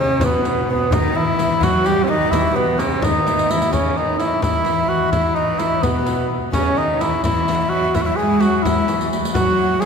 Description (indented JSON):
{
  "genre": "Persian modal ensemble",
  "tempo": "85 BPM (dotted quarters)",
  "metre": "6/8",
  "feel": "straight",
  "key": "E avaz esfahan, E dastgah mahur from 3.7 s",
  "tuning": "A4 = 440 Hz",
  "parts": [
    { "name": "mellow cor anglais", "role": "melody", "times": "0.0-9.9 s", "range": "B3 to G#4", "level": "-19 LUFS", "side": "equal", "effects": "none" },
    { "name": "breathy ney", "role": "second line", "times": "0.0-9.9 s", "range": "B4 to G#5", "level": "-26 LUFS", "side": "equal", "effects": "none" },
    { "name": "bright symphonic cello section", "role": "second line", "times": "0.0-9.9 s", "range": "B2 to G#3", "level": "-22 LUFS", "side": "equal", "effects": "none" },
    { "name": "tombak", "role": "percussion", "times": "0.1-9.9 s", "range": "none", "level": "-26 LUFS", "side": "left 1 dB", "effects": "none" },
    { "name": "frame drum", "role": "percussion", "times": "0.2-9.9 s", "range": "none", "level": "-27 LUFS", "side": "left 2 dB", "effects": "none" },
    { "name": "riq", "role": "percussion", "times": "0.2-9.9 s", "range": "none", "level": "-31 LUFS", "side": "right 1 dB", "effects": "none" }
  ],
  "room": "wet cathedral reverb, RT60 4.7 s",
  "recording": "recorded in a church or concert hall",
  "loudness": "-16 LUFS",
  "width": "side -6 dB against mid",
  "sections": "0.0-3.7 A section; 3.7-9.9 B section",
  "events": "drum fill 3.3-3.7, 8.9-9.4",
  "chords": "none"
}